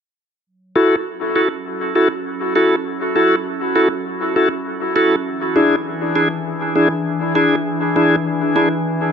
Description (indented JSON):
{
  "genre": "ambient",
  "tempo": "100 BPM",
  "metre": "4/4",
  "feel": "straight",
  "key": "F# minor",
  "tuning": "A4 = 440 Hz",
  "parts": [
    { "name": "warbly tape-like pad", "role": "sustained chords", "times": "1.2-9.1 s", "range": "E3 to G#5", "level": "-24 LUFS", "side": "left 1 dB", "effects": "chorus, built-in reverb" },
    { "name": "bright tonewheel organ", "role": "stabs", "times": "0.8-8.7 s", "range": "D4 to A4", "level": "-16 LUFS", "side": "equal", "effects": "slow rotary speaker, low-pass filter, dub echo" }
  ],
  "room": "moderate echo chamber reverb, RT60 1.7 s",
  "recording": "dark, warm production",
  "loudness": "-15 LUFS",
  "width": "side -7 dB against mid",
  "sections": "0.5-9.1 A section",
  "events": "fade-in on ambient pad 0.5-9.1",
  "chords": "0.5 F#m7; 5.3 E7"
}